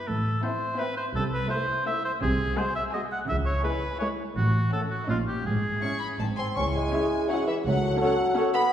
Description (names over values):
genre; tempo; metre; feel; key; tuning
cinematic, playful, whimsical film cue; 168 BPM; 3/4; straight; C# minor; A4 = 439 Hz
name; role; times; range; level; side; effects
clear oboe; second line; 0.0-8.5 s; E#4 to F#5; -30 LUFS; equal; none
rich chamber cello section; bass; 0.1-7.9 s; C#2 to C#3; -32 LUFS; right 2 dB; none
rich chamber double bass section; bass; 0.1-7.9 s; G#1 to C#2; -30 LUFS; equal; none
rich chamber violin section; melody; 0.4-8.6 s; D#5 to C#6; -37 LUFS; left 2 dB; none
warm symphonic violin section; second line; 0.4-8.7 s; C#4 to C#6; -37 LUFS; left 2 dB; none
rich chamber viola section; accompaniment; 0.4-8.6 s; G#3 to A4; -36 LUFS; equal; none
warm bassoon; accompaniment; 6.4-8.7 s; E3 to C#4; -27 LUFS; right 1 dB; none
mellow French horn section; sustained chords; 6.6-8.7 s; E4 to A4; -29 LUFS; left 3 dB; none
mellow clarinet; second line; 6.9-8.5 s; G#4 to A4; -31 LUFS; left 1 dB; none
mellow silver concert flute; second line; 6.9-8.4 s; E5 to F#5; -38 LUFS; equal; none
room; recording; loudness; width
wet scoring stage reverb, RT60 1.9 s; heard from further back in the room; -24 LUFS; side -10 dB against mid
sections
0.0-6.6 A section; 6.6-8.7 B section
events
none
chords
0.1 Am; 1.2 Am/C; 2.2 G#7/B#; 3.3 C#m; 4.4 F#m/A; 5.1 D#7/A#; 5.5 C#m/G#; 6.2 G#; 6.6 C#m; 7.7 F#m/C#